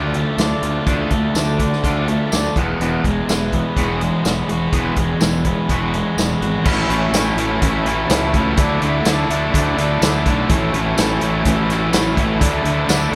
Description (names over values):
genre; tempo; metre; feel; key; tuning
indie rock; 125 BPM; 4/4; straight; A major; A4 = 439 Hz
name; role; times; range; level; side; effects
crunchy overdriven guitar; riff; 0.0-13.2 s; A2 to E4; -23 LUFS; equal; none
raw garage guitar; riff; 0.0-13.2 s; E2 to F#4; -24 LUFS; equal; overdrive
fuzz fingered electric bass; bass; 0.0-13.2 s; E1 to D2; -25 LUFS; equal; overdrive
vintage drum kit; drums; 0.1-13.0 s; crash cymbal, hi-hat, kick drum, snare drum, tambourine; -23 LUFS; equal; none
percussive tonewheel organ; sustained chords; 6.6-13.2 s; E4 to A5; -34 LUFS; equal; none
room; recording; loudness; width
moderate recital hall reverb, RT60 1.6 s; recorded in a church or concert hall; -18 LUFS; mono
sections
0.0-6.7 A section; 6.7-13.2 B section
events
none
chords
0.0 Dm; 2.6 Eadd9; 6.7 A6; 8.6 Dsus2; 10.5 A6; 12.4 Dsus2